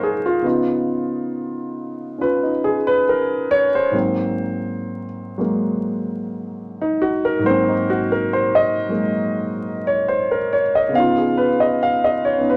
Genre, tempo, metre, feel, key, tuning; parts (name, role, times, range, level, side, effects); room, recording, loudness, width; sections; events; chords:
solo jazz; 69 BPM; 4/4; swing 68% on 8ths; Ab mixolydian; A4 = 444 Hz
dark concert grand piano; solo; 0.0-12.6 s; Ab2 to F5; -20 LUFS; equal
moderate studio ambience, RT60 0.4 s; vinyl crackle; -20 LUFS; mono
0.0-12.6 A section
grand piano solo 0.0-12.6
0.4 Db9; 3.9 Ab9; 10.9 Db9